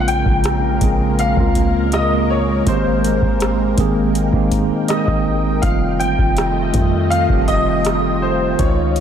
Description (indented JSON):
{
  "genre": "contemporary R&B",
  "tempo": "81 BPM",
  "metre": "4/4",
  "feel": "straight",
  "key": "unclear",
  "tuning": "A4 = 440 Hz",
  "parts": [
    { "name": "clear baby grand piano", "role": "melody", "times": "0.0-9.0 s", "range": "C5 to G5", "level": "-21 LUFS", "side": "left 1 dB", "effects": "ensemble chorus, ping-pong delay" },
    { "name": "tine electric piano", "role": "accompaniment", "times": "0.0-9.0 s", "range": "Db3 to Ab4", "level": "-20 LUFS", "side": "right 2 dB", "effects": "medium stereo tremolo" },
    { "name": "lush unison pad", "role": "sustained chords", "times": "0.0-9.0 s", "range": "Db3 to G5", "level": "-23 LUFS", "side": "equal", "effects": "chorus, phaser" },
    { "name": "warm 808-style bass", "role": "bass", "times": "0.0-9.0 s", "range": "F1 to F2", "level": "-21 LUFS", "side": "equal", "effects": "none" },
    { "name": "booming analog drum machine", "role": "drums", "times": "0.1-9.0 s", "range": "hi-hat, kick drum, rim click", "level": "-20 LUFS", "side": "equal", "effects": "none" }
  ],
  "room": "moderate plate reverb, RT60 2.4 s",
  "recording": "dreamy mix soaked in reverb",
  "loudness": "-14 LUFS",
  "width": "side -8 dB against mid",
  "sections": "0.0-9.0 A section",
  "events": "none",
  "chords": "0.0 Bbm9; 2.7 Abmaj9; 5.6 F9"
}